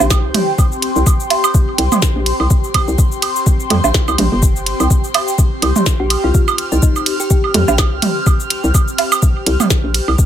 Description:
minimal techno; 125 BPM; 4/4; swing 56% on 16ths; A4 = 438 Hz
hollow knocking FM bass; bass; 0.0-10.2 s; G1 to F2; -16 LUFS; equal; tube saturation, sidechain pumping
minimal click drum kit; drums; 0.0-10.3 s; hi-hat, ride cymbal, shaker, snare drum; -20 LUFS; equal
electronic woodblock and toms; percussion; 0.0-10.2 s; -18 LUFS; right 6 dB; overdrive
airy breathy pad; texture; 0.0-10.3 s; C4 to F6; -20 LUFS; left 2 dB; chorus, phaser, sidechain pumping
electronic kick drum; drums; 0.1-10.3 s; -13 LUFS; equal
thumb-piano-like synth pluck; melody; 6.0-7.4 s; Eb4 to G4; -23 LUFS; left 2 dB; chorus, tape echo
light reverb; -12 LUFS; side -10 dB against mid
0.0-10.3 A section
0.0 C5
0.10 | 0.58 1.06 1.54 2.02 | 2.50 2.98 3.46 3.94 | 4.42 4.91 5.38 5.87 | 6.34 6.83 7.30 7.79 | 8.27 8.74 9.22 9.71 | 10.19

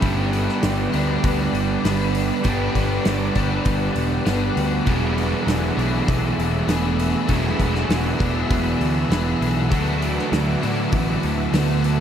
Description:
rock, shoegaze and dream pop; 99 BPM; 4/4; straight; A4 = 439 Hz
string machine, violins; sustained chords; 0.0-12.0 s; A3 to E6; -30 LUFS; equal; ensemble chorus
twelve-string electric guitar; arpeggios; 0.0-12.0 s; F#3 to A4; -31 LUFS; left 5 dB
biting overdriven guitar; riff; 0.0-12.0 s; D3 to G#4; -26 LUFS; left 6 dB; analog chorus
overdriven electric guitar; riff; 0.0-12.0 s; D3 to G#4; -24 LUFS; right 6 dB; reverse reverb
fuzz picked electric bass; bass; 0.0-12.0 s; E1 to A2; -24 LUFS; equal; overdrive
loose indie drum kit; drums; 0.0-12.0 s; hi-hat, kick drum, snare drum; -26 LUFS; equal
wet huge ambient reverb, RT60 8.1 s; dreamy mix soaked in reverb; -18 LUFS; side -9 dB against mid
0.0-12.0 A section
0.0 Gmaj7; 4.9 E9sus4; 9.7 D69
| 0.02 0.62 1.23 1.84 | 2.44 3.05 3.65 4.26 | 4.87 5.47 6.08 6.69 | 7.29 7.90 8.51 9.11 | 9.72 10.32 10.93 11.54

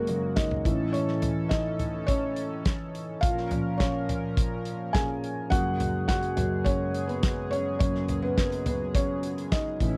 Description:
piano-driven pop; 105 BPM; 4/4; straight; A4 = 441 Hz
felt-muted upright piano; accompaniment; 0.0-10.0 s; F#2 to G#5; -30 LUFS; equal
chorused pulse-width pad; sustained chords; 0.0-10.0 s; F#2 to A#4; -37 LUFS; equal
loose indie drum kit; drums; 0.1-9.9 s; hi-hat, kick drum, snare drum, toms; -30 LUFS; equal
little or no reverb; dry, close 1970s-style studio recording; -28 LUFS; mono
0.0-10.0 A section
felt piano solo 0.0-10.0
0.0 F#add9; 0.7 A; 3.2 A#m; 5.5 F#add9
0.37 | 0.94 1.51 2.08 2.66 | 3.23 3.80 4.37 4.95 | 5.52 6.09 6.66 7.23 | 7.80 8.38 8.95 9.52

